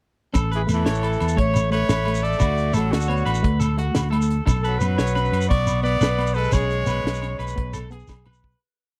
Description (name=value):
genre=highlife guitar band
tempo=116 BPM (dotted quarters)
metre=12/8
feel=straight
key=A major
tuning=A4 = 440 Hz
part: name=electric guitar at the edge of break-up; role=accompaniment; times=0.3-8.3 s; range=A3 to C#4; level=-32 LUFS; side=equal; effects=spring reverb
part: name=electric guitar at the edge of break-up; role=arpeggios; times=0.3-8.6 s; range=F#4 to C#6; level=-32 LUFS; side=equal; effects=none
part: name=fingered electric bass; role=bass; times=0.3-8.5 s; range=A1 to F#2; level=-26 LUFS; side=equal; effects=none
part: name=tight funk drum kit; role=drums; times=0.3-8.5 s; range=hi-hat, kick drum, snare drum, toms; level=-25 LUFS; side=equal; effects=none
part: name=agogo bells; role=percussion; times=0.3-8.4 s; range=none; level=-37 LUFS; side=equal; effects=none
part: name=shekere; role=percussion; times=0.3-8.6 s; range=none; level=-30 LUFS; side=equal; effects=none
part: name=clear trumpet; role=melody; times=0.5-7.9 s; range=F#4 to D5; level=-28 LUFS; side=equal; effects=none
part: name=growling tenor saxophone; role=second line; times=0.6-7.9 s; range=D3 to B3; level=-35 LUFS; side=equal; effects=none
room=little or no reverb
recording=dry, close 1970s-style studio recording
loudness=-22 LUFS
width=mono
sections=0.3-8.6 A section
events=fade-out 6.5-8.6; drum fill 8.1-8.6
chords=0.3 A; 2.4 D; 4.5 Bm; 6.5 Amaj9/B (rootless)